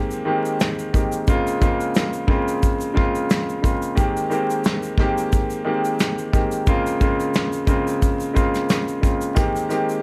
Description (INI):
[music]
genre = hip hop, boom-bap hip-hop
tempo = 89 BPM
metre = 4/4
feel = swing 55% on 16ths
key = Ab major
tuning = A4 = 443 Hz
[part]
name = warm upright piano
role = accompaniment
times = 0.0-10.0 s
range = Db3 to G4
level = -24 LUFS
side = equal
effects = cassette tape, high-pass filter, low-pass filter
[part]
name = tube shaker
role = percussion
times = 0.1-10.0 s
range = none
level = -43 LUFS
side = equal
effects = none
[part]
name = soft brush drum kit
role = drums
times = 0.6-9.9 s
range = hi-hat, kick drum, rim click, snare drum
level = -23 LUFS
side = equal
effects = none
[sound]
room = light reverb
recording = vinyl crackle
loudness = -21 LUFS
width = mono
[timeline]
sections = 0.0-10.0 A section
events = break 0.0-9.4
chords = 0.0 Abmaj7; 1.3 Bbm7; 4.0 Abmaj7; 6.7 Bbm7; 9.4 Abmaj7